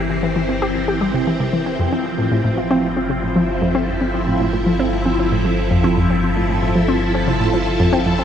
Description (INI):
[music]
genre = ambient, sequencer-driven space music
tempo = 115 BPM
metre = 4/4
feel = straight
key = unclear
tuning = A4 = 440 Hz
[part]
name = phased string machine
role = sustained chords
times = 0.0-8.2 s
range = E3 to Bb4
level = -19 LUFS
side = equal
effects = ensemble chorus, phaser
[part]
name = round analog bass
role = bass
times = 0.0-8.2 s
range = G1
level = -25 LUFS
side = equal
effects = none
[part]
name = analog pluck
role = riff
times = 0.1-8.2 s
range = F2 to G4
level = -19 LUFS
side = equal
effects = chorus, tape echo
[sound]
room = wet huge ambient reverb, RT60 8.8 s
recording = dark, warm production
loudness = -16 LUFS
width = side -9 dB against mid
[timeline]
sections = 0.0-8.2 A section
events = none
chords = 0.0 C7/G; 1.8 Fmaj7/G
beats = 0.23 0.75 1.27 | 1.79 2.32 2.84 3.36 | 3.88 4.40 4.92 5.45 | 5.97 6.49 7.01 7.53 | 8.06